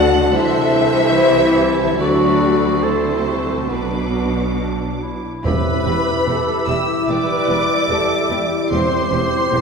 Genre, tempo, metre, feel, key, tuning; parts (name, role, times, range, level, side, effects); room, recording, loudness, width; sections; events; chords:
cinematic, emotional film score for orchestra; 68-75 BPM; 4/4; rubato; E minor; A4 = 440 Hz
warm symphonic violin section; melody; 0.0-9.6 s; G5 to E6; -26 LUFS; left 2 dB
clear studio violin section; second line; 0.0-9.6 s; G4 to F#5; -25 LUFS; left 1 dB
mellow hollow large flute ensemble; second line; 0.0-9.6 s; F#4 to E5; -22 LUFS; equal
warm clarinet; second line; 0.0-9.6 s; D4 to A4; -24 LUFS; equal
warm symphonic viola section; accompaniment; 0.0-9.6 s; D3 to C5; -23 LUFS; right 3 dB
warm French horn section; sustained chords; 0.0-9.6 s; G3 to F#4; -22 LUFS; left 4 dB
concert harp; arpeggios; 0.0-9.6 s; B2 to C5; -27 LUFS; left 2 dB
clear symphonic cello section; bass; 0.0-9.6 s; C2 to B2; -26 LUFS; right 2 dB
dark symphonic double bass section; bass; 0.0-9.6 s; E1 to D2; -26 LUFS; right 3 dB
timpani; percussion; 5.4-9.6 s; E2; -24 LUFS; right 1 dB
warm oboe; second line; 5.5-9.6 s; C5 to E5; -27 LUFS; right 2 dB
wet scoring stage reverb, RT60 1.9 s; heard from further back in the room; -15 LUFS; side -5 dB against mid
0.0-5.4 A section; 5.4-9.6 B section
0.3 C; 2.0 D; 3.7 Bm; 5.4 Em; 8.7 C/E